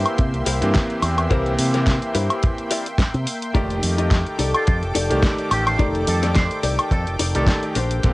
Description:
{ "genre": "nu-disco, nu disco", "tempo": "107 BPM", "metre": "4/4", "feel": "swing 55% on 16ths", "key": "unclear", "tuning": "A4 = 440 Hz", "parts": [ { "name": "bright electric grand piano", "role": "accompaniment", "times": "0.0-8.1 s", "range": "D3 to D5", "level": "-25 LUFS", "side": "equal", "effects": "cassette tape" }, { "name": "lush unison pad", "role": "sustained chords", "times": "0.0-8.1 s", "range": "Bb3 to D6", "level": "-28 LUFS", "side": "equal", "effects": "chorus, sidechain pumping, cassette tape" }, { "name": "direct-recorded clean electric guitar", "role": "riff", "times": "0.0-8.1 s", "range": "D4 to Eb5", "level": "-27 LUFS", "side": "left 5 dB", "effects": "lush chorus, vintage 12-bit sampler grit, cassette tape" }, { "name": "fingered electric bass with an envelope filter", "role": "bass", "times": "0.0-8.1 s", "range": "F1 to C3", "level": "-22 LUFS", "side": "equal", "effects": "none" }, { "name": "pop drum kit", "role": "drums", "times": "0.1-8.1 s", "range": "hi-hat, snare drum, woodblock", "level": "-24 LUFS", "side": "equal", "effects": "studio ambience, cassette tape" }, { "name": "kick drum", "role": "drums", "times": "0.2-8.1 s", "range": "none", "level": "-19 LUFS", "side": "equal", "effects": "studio ambience, cassette tape" }, { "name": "electric guitar with an envelope filter", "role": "melody", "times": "4.5-7.8 s", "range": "F4 to C5", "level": "-28 LUFS", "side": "right 1 dB", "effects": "cassette tape, tape echo" } ], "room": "light reverb", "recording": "home recording on cassette", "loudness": "-18 LUFS", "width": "side -20 dB against mid", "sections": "0.0-8.1 A section", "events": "none", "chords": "0.0 C7; 3.6 F13" }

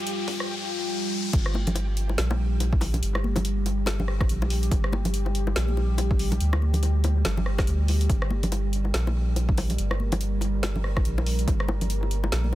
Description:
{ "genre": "deep dubstep", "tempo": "142 BPM", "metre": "4/4", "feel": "swing 59% on 16ths, half-time", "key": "G minor", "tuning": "A4 = 444 Hz", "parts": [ { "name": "deep dark ambient pad", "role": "sustained chords", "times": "0.0-12.6 s", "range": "G3 to Bb4", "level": "-32 LUFS", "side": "equal", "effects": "chorus, built-in reverb" }, { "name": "riser", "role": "sound effects", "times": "0.0-1.3 s", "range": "none", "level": "-33 LUFS", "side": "left 4 dB", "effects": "none" }, { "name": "backwards swelling texture", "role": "texture", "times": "0.0-0.5 s", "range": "G4", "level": "-40 LUFS", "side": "right 1 dB", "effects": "built-in reverb" }, { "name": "deep house drum kit", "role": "drums", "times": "0.1-12.4 s", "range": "crash cymbal, hi-hat, rim click, snare drum", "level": "-32 LUFS", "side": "equal", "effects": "high-pass filter on hats, soft clipping on snare, high-pass filter on snare, high-pass filter on cymbals, high-pass filter on room" }, { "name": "electronic kick drum", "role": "drums", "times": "0.3-11.6 s", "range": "none", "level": "-25 LUFS", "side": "equal", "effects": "high-pass filter on kick, high-pass filter on room" }, { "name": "soft dub sub bass", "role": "bass", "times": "1.3-12.6 s", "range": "G1 to D2", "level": "-25 LUFS", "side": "equal", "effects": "none" }, { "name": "congas and bongos", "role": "percussion", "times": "1.5-12.6 s", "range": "none", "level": "-32 LUFS", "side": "left 2 dB", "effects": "dub echo" } ], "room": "little or no reverb", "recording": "dense, heavily limited modern master", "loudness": "-23 LUFS", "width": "side -15 dB against mid", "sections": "0.0-1.3 A section; 1.3-12.6 B section", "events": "build-up 0.0-1.3; riser 0.0-1.3; drop 1.3-12.6", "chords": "0.0 Fsus2/G; 1.3 Gm" }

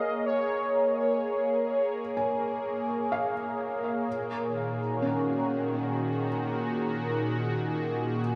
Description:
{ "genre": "ambient", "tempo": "63 BPM", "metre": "4/4", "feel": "straight", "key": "Bb minor", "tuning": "A4 = 442 Hz", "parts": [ { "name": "warm velvety synth lead", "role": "melody", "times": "0.0-1.2 s", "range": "Db5 to Eb5", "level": "-32 LUFS", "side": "equal", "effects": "chorus, diffuse ambient delay" }, { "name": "warm analog pad", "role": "sustained chords", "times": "0.0-8.4 s", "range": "Bb2 to Db5", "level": "-32 LUFS", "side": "equal", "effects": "chorus" }, { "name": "felt-muted upright piano", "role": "arpeggios", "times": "0.0-8.4 s", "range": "Db4 to Ab5", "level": "-37 LUFS", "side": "equal", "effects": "diffuse ambient delay" } ], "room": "wet cathedral reverb, RT60 5.3 s", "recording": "small room ambience", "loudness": "-29 LUFS", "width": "mono", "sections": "0.0-8.4 A section", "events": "none", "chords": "0.0 Bbm7; 4.1 Ebm/Bb" }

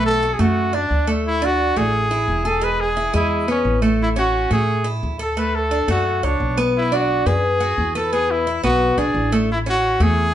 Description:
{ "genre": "latin, Cuban son and guajira", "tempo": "175 BPM", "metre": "4/4", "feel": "straight", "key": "A major", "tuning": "A4 = 440 Hz", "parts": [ { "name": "clear trumpet", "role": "melody", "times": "0.0-10.3 s", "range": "C#4 to B4", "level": "-20 LUFS", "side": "equal", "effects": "none" }, { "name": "Cuban tres", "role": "arpeggios", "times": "0.0-10.3 s", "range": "G#3 to C#5", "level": "-21 LUFS", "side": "right 1 dB", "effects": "none" }, { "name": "upright bass", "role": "bass", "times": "0.0-10.3 s", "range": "E1 to A2", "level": "-23 LUFS", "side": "equal", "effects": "none" } ], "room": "moderate large studio reverb, RT60 0.9 s", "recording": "band playing live in one room, nothing above 10.9 kHz", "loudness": "-17 LUFS", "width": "side -11 dB against mid", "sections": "0.0-9.5 A section", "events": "none", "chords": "0.0 Bm7; 1.2 Dadd9; 2.6 E; 4.0 A6; 5.4 Dmaj7; 6.7 Bm; 8.1 E7; 9.5 A" }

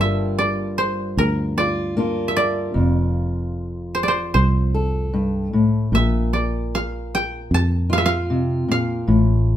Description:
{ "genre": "acoustic folk duo or small band", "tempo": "76 BPM", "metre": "4/4", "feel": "straight", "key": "unclear", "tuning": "A4 = 439 Hz", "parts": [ { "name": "koto", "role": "melody", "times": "0.0-9.6 s", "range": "Bb4 to A5", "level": "-22 LUFS", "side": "right 2 dB", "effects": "none" }, { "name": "fingerpicked steel-string acoustic guitar", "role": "accompaniment", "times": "0.0-9.6 s", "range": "F2 to A4", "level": "-22 LUFS", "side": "left 2 dB", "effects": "none" }, { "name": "fingered electric bass", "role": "bass", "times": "0.0-9.6 s", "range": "F1 to F2", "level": "-22 LUFS", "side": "right 1 dB", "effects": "none" } ], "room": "light reverb", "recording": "minimal, uncompressed stereo recording", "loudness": "-18 LUFS", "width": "side -11 dB against mid", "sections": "0.0-9.6 A section", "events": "none", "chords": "0.0 Gm7; 2.8 F; 5.9 Bb5" }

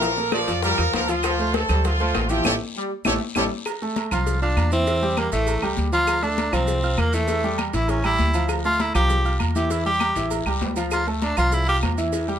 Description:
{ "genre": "latin, salsa", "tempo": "198 BPM", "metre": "4/4", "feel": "straight", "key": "D minor", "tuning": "A4 = 440 Hz", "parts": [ { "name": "brilliant horn section", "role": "melody", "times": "0.0-3.4 s", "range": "F4 to D5", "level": "-24 LUFS", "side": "right 1 dB", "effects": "none" }, { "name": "bright trombone section", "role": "second line", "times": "0.0-3.5 s", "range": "E3 to A3", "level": "-29 LUFS", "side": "left 1 dB", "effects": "none" }, { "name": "clear concert grand piano", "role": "accompaniment", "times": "0.0-12.4 s", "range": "E3 to F6", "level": "-26 LUFS", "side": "equal", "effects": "none" }, { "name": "upright bass", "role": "bass", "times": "0.0-12.4 s", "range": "A1 to F2", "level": "-25 LUFS", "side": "equal", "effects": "none" }, { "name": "bongos and cowbell", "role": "percussion", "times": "0.0-12.3 s", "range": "none", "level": "-33 LUFS", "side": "left 6 dB", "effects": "none" }, { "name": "congas", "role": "percussion", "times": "0.0-12.4 s", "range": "none", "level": "-31 LUFS", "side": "left 4 dB", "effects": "none" }, { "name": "guiro", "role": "percussion", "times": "0.0-12.4 s", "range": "none", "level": "-38 LUFS", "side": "left 6 dB", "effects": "none" }, { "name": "maracas", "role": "percussion", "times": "0.0-12.4 s", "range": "none", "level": "-38 LUFS", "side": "right 6 dB", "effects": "none" }, { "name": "timbales and agogo bells", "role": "percussion", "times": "0.0-12.3 s", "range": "none", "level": "-32 LUFS", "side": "right 9 dB", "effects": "none" }, { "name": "claves", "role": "percussion", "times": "0.3-12.0 s", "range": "none", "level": "-31 LUFS", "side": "left 2 dB", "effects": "none" }, { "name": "edgy tenor saxophone", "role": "melody", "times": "4.1-11.8 s", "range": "A3 to G4", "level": "-23 LUFS", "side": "equal", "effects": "plate reverb" } ], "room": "light reverb", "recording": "close, detailed microphones", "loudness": "-19 LUFS", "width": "side -9 dB against mid", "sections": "0.0-3.7 A section; 3.7-12.4 B section", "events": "band accent 2.5-3.7; drum fill 2.9-3.7; tenor saxophone solo 3.7-12.4", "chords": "0.0 Bbmaj7; 1.2 Dm7; 2.5 A7(no3); 3.7 F; 4.3 Csus4; 4.9 Am7; 5.5 A7; 6.1 Dm; 6.7 Csus4; 7.3 Emadd11; 7.9 A5; 8.5 Dm; 9.1 Csus4; 9.7 Emadd11; 10.3 A7; 10.9 Dm; 11.5 Csus4" }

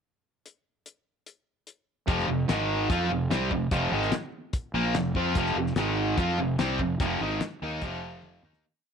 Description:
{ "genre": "classic rock", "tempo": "146 BPM", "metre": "4/4", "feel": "straight", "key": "unclear", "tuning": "A4 = 440 Hz", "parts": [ { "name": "damped 70s drum kit", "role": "drums", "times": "0.5-8.6 s", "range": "hi-hat, kick drum, snare drum, toms", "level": "-31 LUFS", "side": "left 2 dB", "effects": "none" }, { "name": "overdriven electric guitar", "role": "riff", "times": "2.1-8.6 s", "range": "F2 to F4", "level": "-26 LUFS", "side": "right 1 dB", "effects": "none" }, { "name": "fuzz fingered electric bass", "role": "bass", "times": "2.1-8.6 s", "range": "F1 to F2", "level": "-31 LUFS", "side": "equal", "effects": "overdrive" } ], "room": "light reverb, small room ambience", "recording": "1960s-style stereo", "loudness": "-25 LUFS", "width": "side -7 dB against mid", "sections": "0.5-2.1 pickup bar; 2.1-8.6 riff", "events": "fade-out 7.0-8.6; drum fill 8.2-8.6", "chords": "0.5 N.C.; 2.1 F5; 2.5 Ab5; 2.9 F5; 5.8 Ab5; 6.2 F5" }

